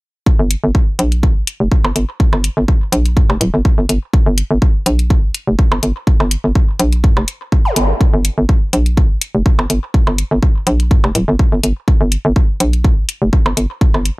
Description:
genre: minimal techno.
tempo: 124 BPM.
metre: 4/4.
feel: swing 54% on 16ths.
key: G minor.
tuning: A4 = 444 Hz.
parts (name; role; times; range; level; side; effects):
electronic kick drum; drums; 0.3-13.9 s; none; -12 LUFS; equal; none.
hollow knocking FM bass; bass; 0.4-14.1 s; D1 to G2; -14 LUFS; equal; sidechain pumping.
electronic hi-hat; drums; 0.5-14.2 s; none; -19 LUFS; left 3 dB; none.
percussion blips; percussion; 1.8-14.0 s; none; -22 LUFS; right 2 dB; overdrive, tape echo.
zap; sound effects; 7.7-7.8 s; none; -19 LUFS; equal; none.
room: little or no reverb.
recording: none.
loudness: -12 LUFS.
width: side -22 dB against mid.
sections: 0.3-14.2 A section.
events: none.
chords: none.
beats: | 0.27 0.75 1.23 1.72 | 2.20 2.68 3.17 3.65 | 4.14 4.62 5.10 5.59 | 6.07 6.55 7.04 7.52 | 8.01 8.49 8.97 9.46 | 9.94 10.43 10.91 11.39 | 11.88 12.36 12.85 13.33 | 13.81.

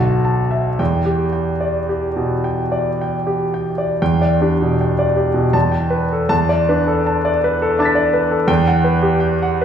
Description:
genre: classical, impressionist solo piano.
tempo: 54-87 BPM.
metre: 3/4.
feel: rubato.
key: E minor.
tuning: A4 = 440 Hz.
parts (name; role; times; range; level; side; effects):
clear concert grand piano; solo; 0.0-9.6 s; B1 to B6; -15 LUFS; equal; none.
room: wet recital hall reverb, RT60 1.5 s.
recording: heard from further back in the room, small room ambience.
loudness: -15 LUFS.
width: side -8 dB against mid.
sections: 0.0-4.0 A section; 4.0-9.6 B section.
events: none.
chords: 0.0 B7sus4; 0.8 Em7; 5.5 G69/E; 6.3 Bm7/E; 8.5 Emadd9.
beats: | 0.79 1.90 2.99 | 4.00 4.81 5.55 | 6.30 7.05 7.79 | 8.49 9.22.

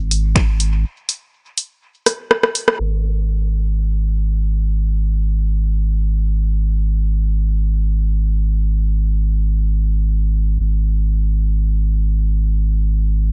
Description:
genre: dub techno.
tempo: free time.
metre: none.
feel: none.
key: unclear.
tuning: A4 = 440 Hz.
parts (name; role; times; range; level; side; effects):
warm sub bass; bass; 0.0-13.3 s; G#1; -18 LUFS; equal; transformer saturation, sidechain pumping.
punchy analog drum machine; drums; 0.1-2.8 s; finger snaps, hi-hat, rim click; -18 LUFS; equal; overdrive.
electronic kick drum; drums; 0.4-0.5 s; none; -19 LUFS; equal; overdrive.
room: little or no reverb.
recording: dry, gritty hardware recording, low-pass filter, nothing above 10.3 kHz.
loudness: -18 LUFS.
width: mono.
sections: 0.0-2.8 A section; 2.8-13.3 B section.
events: break 0.8-2.8; drum fill 2.1-2.8; band accent 2.7; filter sweep 2.8-13.3.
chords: none.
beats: free time.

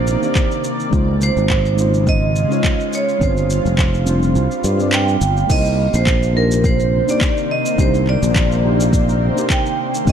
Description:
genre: sunset chillout.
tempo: 105 BPM.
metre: 4/4.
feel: swing 55% on 16ths.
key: C minor.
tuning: A4 = 440 Hz.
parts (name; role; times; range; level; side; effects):
vibraphone with hard mallets; melody; 0.0-10.1 s; Bb4 to G5; -21 LUFS; right 4 dB; ping-pong delay.
mellow FM electric piano; accompaniment; 0.0-10.1 s; G3 to D5; -23 LUFS; moving between left 6 dB and right 2 dB; chorus, auto-pan.
shimmering ambient pad; sustained chords; 0.0-10.1 s; C3 to D5; -23 LUFS; equal; chorus, built-in reverb.
sustaining fretless electric bass; bass; 0.0-10.1 s; F1 to G2; -17 LUFS; equal; tube saturation.
smooth R&B drum kit; drums; 0.1-10.1 s; crash cymbal, handclaps, shaker; -25 LUFS; equal; overdrive.
electronic kick drum; drums; 0.4-10.1 s; none; -18 LUFS; equal; none.
room: light reverb, digital ambience.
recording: dark, warm production.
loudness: -14 LUFS.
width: side -8 dB against mid.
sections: 0.0-5.5 A section; 5.5-10.1 B section.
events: kick drops out 4.4-5.5.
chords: 0.0 Cm9; 0.9 Dbmaj7; 3.2 G7sus4; 5.5 Cm9.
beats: 0.35 | 0.93 1.50 2.07 2.64 | 3.21 3.78 4.36 4.93 | 5.50 6.07 6.64 7.21 | 7.78 8.36 8.93 9.50 | 10.07.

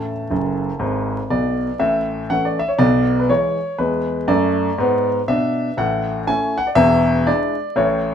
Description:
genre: jazz, stride piano.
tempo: 121 BPM.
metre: 4/4.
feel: swing 62% on 8ths.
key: A major.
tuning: A4 = 443 Hz.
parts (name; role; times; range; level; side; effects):
clear grand piano; solo; 0.0-8.1 s; E1 to A5; -16 LUFS; equal; none.
room: moderate studio reverb, RT60 0.6 s.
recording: minimal, uncompressed stereo recording, vinyl crackle.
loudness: -16 LUFS.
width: side -8 dB against mid.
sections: 0.0-1.8 A section; 1.8-8.1 A section.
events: grand piano fill 0.3-1.8.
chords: 0.0 A; 2.8 E/B; 3.8 E7; 5.8 A; 6.8 E7.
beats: 0.31 0.81 1.30 | 1.80 2.30 2.80 3.29 | 3.79 4.29 4.79 5.28 | 5.78 6.28 6.77 7.27 | 7.77.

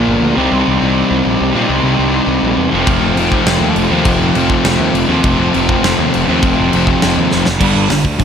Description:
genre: punk rock.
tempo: 203 BPM.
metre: 4/4.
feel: straight.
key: unclear.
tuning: A4 = 440 Hz.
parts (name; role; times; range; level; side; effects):
distorted electric guitar; riff; 0.0-8.2 s; F2 to C4; -16 LUFS; right 11 dB; distortion.
sludgy distorted guitar; riff; 0.0-8.2 s; F2 to Eb4; -15 LUFS; left 9 dB; overdrive.
fuzz picked electric bass; bass; 0.0-8.2 s; F1 to Bb2; -18 LUFS; equal; overdrive.
big rock drum kit; drums; 2.9-8.2 s; crash cymbal, hi-hat, kick drum, snare drum; -17 LUFS; equal; none.
room: little or no reverb.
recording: none.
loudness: -11 LUFS.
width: side -7 dB against mid.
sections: 0.0-7.6 A section.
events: half time 0.0-7.6; drum fill 7.3.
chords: 0.4 Cm; 2.7 F; 7.6 G5.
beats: 0.21 | 0.51 0.80 1.10 1.40 | 1.69 1.99 2.28 2.58 | 2.87 3.17 3.46 3.76 | 4.05 4.35 4.65 4.94 | 5.24 5.53 5.83 6.13 | 6.42 6.72 7.01 7.31 | 7.61 7.90 8.20.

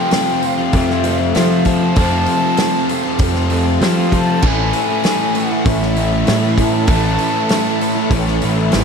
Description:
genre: rock, shoegaze and dream pop.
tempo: 98 BPM.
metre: 4/4.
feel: straight.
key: unclear.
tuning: A4 = 441 Hz.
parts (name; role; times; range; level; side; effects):
breathy mellow concert flute; melody; 0.0-8.4 s; E5 to A5; -22 LUFS; left 2 dB; analog delay.
string machine, full ensemble; sustained chords; 0.0-8.8 s; E4 to C#5; -26 LUFS; equal; ensemble chorus.
biting overdriven guitar; riff; 0.0-8.8 s; F2 to A3; -23 LUFS; right 1 dB; none.
crunchy overdriven guitar; riff; 0.0-8.8 s; A2 to F4; -22 LUFS; left 11 dB; analog chorus.
overdriven electric guitar; riff; 0.0-8.8 s; F2 to F4; -22 LUFS; right 7 dB; reverse reverb.
loose indie drum kit; drums; 0.1-8.8 s; crash cymbal, hi-hat, kick drum, snare drum; -20 LUFS; equal; none.
fingerpicked twelve-string acoustic guitar; arpeggios; 0.7-8.8 s; E3 to C#4; -29 LUFS; right 3 dB; none.
fuzz picked electric bass; bass; 0.7-8.8 s; G#1 to F3; -18 LUFS; equal; overdrive.
room: moderate plate reverb, RT60 3.1 s.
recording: dreamy mix soaked in reverb.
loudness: -13 LUFS.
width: side -6 dB against mid.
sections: 0.0-8.8 A section.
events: none.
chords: 0.0 Fmaj7; 4.4 Amaj7.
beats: 0.12 0.74 1.36 | 1.97 2.59 3.20 3.82 | 4.43 5.04 5.66 6.27 | 6.89 7.50 8.12 8.73.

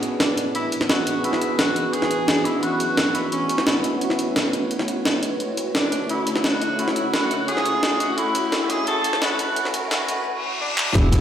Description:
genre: liquid drum and bass.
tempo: 173 BPM.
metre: 4/4.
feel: straight.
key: B dorian.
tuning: A4 = 440 Hz.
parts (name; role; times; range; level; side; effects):
tine electric piano; accompaniment; 0.0-11.2 s; A3 to C#5; -26 LUFS; equal; fast stereo tremolo, digital delay.
shimmering ambient pad; sustained chords; 0.0-11.2 s; B2 to C#5; -30 LUFS; right 1 dB; chorus, built-in reverb.
breakbeat sampler-style drum kit; drums; 0.0-11.2 s; handclaps, hi-hat, shaker, snare drum; -23 LUFS; equal; none.
riser and reverse cymbal; sound effects; 0.0-11.0 s; none; -33 LUFS; left 1 dB; none.
clear tenor saxophone; melody; 0.2-11.2 s; C#4 to B4; -24 LUFS; equal; tape echo.
smooth synth bass; bass; 11.0-11.2 s; E1; -18 LUFS; equal; none.
crunchy breakbeat drum kit; drums; 11.0-11.2 s; hi-hat, snare drum; -34 LUFS; equal; high-pass filter on hats, high-pass filter on snare, high-pass filter on room.
electronic kick drum; drums; 11.0-11.2 s; none; -18 LUFS; equal; none.
room: wet digital room reverb, RT60 1.2 s, small room ambience.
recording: played on a big sound system in a bare room, large studio reverb, high-pass filter.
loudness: -19 LUFS.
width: side -9 dB against mid.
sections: 0.0-11.0 A section.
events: build-up 0.0-11.0; filter sweep 0.0-11.0; reverse cymbal 10.3-11.0; drum fill 10.8.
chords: 0.0 E9; 2.6 A6; 5.2 Dmaj7; 8.2 Bm11.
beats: 0.20 0.55 0.89 | 1.24 1.59 1.93 2.28 | 2.63 2.98 3.32 3.67 | 4.01 4.36 4.71 5.06 | 5.40 5.75 6.10 6.44 | 6.79 7.14 7.48 7.83 | 8.18 8.52 8.87 9.22 | 9.56 9.91 10.26 10.61 | 10.95.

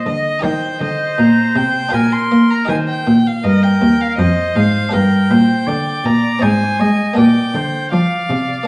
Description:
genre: classical, baroque-style sonata movement with continuo.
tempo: 80 BPM.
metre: 3/4.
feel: straight.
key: unclear.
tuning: A4 = 440 Hz.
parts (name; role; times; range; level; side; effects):
rich violin; melody; 0.0-8.7 s; Eb5 to C6; -24 LUFS; equal; none.
clear oboe; second line; 0.0-8.7 s; Bb4 to Eb5; -24 LUFS; equal; none.
buff-stop harpsichord; accompaniment; 0.0-8.7 s; Eb2 to Eb5; -26 LUFS; equal; none.
rich cello; bass; 0.0-8.6 s; Eb2 to Bb3; -17 LUFS; equal; none.
room: wet recital hall reverb, RT60 1.4 s.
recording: vinyl crackle, small room ambience.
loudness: -15 LUFS.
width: mono.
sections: 0.0-8.7 A section.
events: none.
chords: 0.4 Eb; 1.9 Bb; 2.7 Eb; 4.9 Gm; 6.4 Ab; 7.2 Bb.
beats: | 0.44 1.18 1.93 | 2.69 3.44 4.18 | 4.93 5.67 6.42 | 7.17 7.92 8.67.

